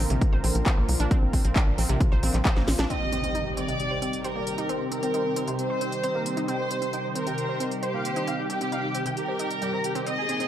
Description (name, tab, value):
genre	uplifting trance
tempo	134 BPM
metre	4/4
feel	straight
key	C minor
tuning	A4 = 437 Hz
part	lush unison pad	sustained chords	0.0-10.5 s	Bb2 to Bb4	-32 LUFS	equal	chorus, sidechain pumping
part	wide unison pluck	arpeggios	0.0-10.5 s	C3 to C5	-32 LUFS	right 2 dB	sidechain pumping, dub echo
part	tight sequencer bass	bass	0.0-2.9 s	Bb1 to C2	-25 LUFS	equal	sidechain pumping
part	techno drum kit	drums	0.1-10.5 s	handclaps, hi-hat, snare drum	-32 LUFS	equal	overdrive, sidechain pumping on hats
part	electronic kick drum	drums	0.2-2.5 s	none	-22 LUFS	equal	overdrive
part	dense compressed supersaw	melody	2.9-10.5 s	C4 to Bb5	-32 LUFS	equal	sidechain pumping, low-pass filter, dub echo
part	rich studio violin section	second line	2.9-10.5 s	G4 to Eb5	-30 LUFS	equal	dub echo
part	impact	sound effects	2.9-4.7 s	none	-34 LUFS	equal	none
room	light reverb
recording	none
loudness	-24 LUFS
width	side -11 dB against mid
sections	0.0-2.9 A section; 2.9-10.5 B section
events	drum fill 2.6-2.9; impact 2.9-4.7; filter sweep on supersaw synth 2.9-10.5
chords	0.0 Bb; 2.9 Cm